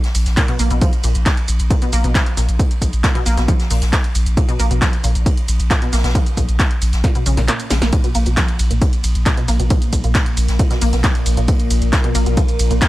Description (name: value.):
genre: driving peak-time techno.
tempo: 135 BPM.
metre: 4/4.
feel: straight.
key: unclear.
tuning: A4 = 440 Hz.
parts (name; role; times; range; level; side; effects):
jazz brush drum kit; drums; 0.0-12.9 s; hi-hat, ride cymbal, snare drum; -31 LUFS; right 1 dB; sidechain pumping on cymbals, high-pass filter on cymbals, sidechain pumping on hats, high-pass filter on hats, high-pass filter on snare, high-pass filter on room.
punchy analog drum machine; drums; 0.0-12.9 s; handclaps, hi-hat, ride cymbal, shaker, snare drum; -22 LUFS; equal; sidechain pumping on hats, sidechain pumping on perc, sidechain pumping on cymbals.
saturated sub bass; bass; 0.1-12.8 s; Bb1; -17 LUFS; equal; overdrive, sidechain pumping, low-pass filter.
resonant blip pluck; riff; 0.4-12.7 s; Bb2 to Bb3; -24 LUFS; equal; wide subtle chorus, sidechain pumping, analog delay.
electronic kick drum; drums; 0.4-12.9 s; none; -16 LUFS; equal; none.
deep dark ambient pad; drone; 8.7-12.9 s; Bb2 to Bb3; -26 LUFS; left 1 dB; chorus, built-in reverb, sidechain pumping.
room: small room reverb.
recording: transformer saturation.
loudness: -14 LUFS.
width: side -17 dB against mid.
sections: 0.0-12.9 A section.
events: drum fill 7.0-7.9; kick drops out 7.5-7.9.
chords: 0.0 Bb5.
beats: 0.37 | 0.82 1.26 1.71 2.15 | 2.59 3.04 3.48 3.93 | 4.37 4.82 5.26 5.71 | 6.15 6.59 7.04 7.48 | 7.93 8.37 8.82 9.26 | 9.71 10.15 10.59 11.04 | 11.48 11.93 12.37 12.82.